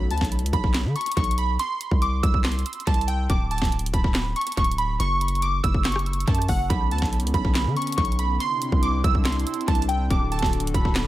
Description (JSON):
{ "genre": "hip hop, trap", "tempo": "141 BPM", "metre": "4/4", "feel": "half-time", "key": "B minor", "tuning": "A4 = 437 Hz", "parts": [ { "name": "glassy digital keys", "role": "melody", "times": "0.0-11.1 s", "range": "F#5 to E6", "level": "-26 LUFS", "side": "right 2 dB", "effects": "chorus, low-pass filter, tape echo" }, { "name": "long sustained 808-style bass", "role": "bass", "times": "0.0-11.1 s", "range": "D1 to D3", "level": "-25 LUFS", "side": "equal", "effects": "none" }, { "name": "trap drum kit", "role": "drums", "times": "0.1-11.1 s", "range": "handclaps, hi-hat, kick drum, rim click, snare drum", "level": "-24 LUFS", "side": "equal", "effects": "tape echo" }, { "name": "hollow soft pad", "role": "sustained chords", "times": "6.7-11.1 s", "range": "C3 to A4", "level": "-30 LUFS", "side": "left 1 dB", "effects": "chorus" } ], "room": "digital ambience", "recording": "echo-heavy mix", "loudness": "-21 LUFS", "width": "side -15 dB against mid", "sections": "0.0-11.1 A section", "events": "none", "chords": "0.0 Bmadd9; 1.6 N.C.; 3.3 Bm/D; 5.0 F#5; 6.7 Bmadd9; 8.4 Cadd9; 10.1 D" }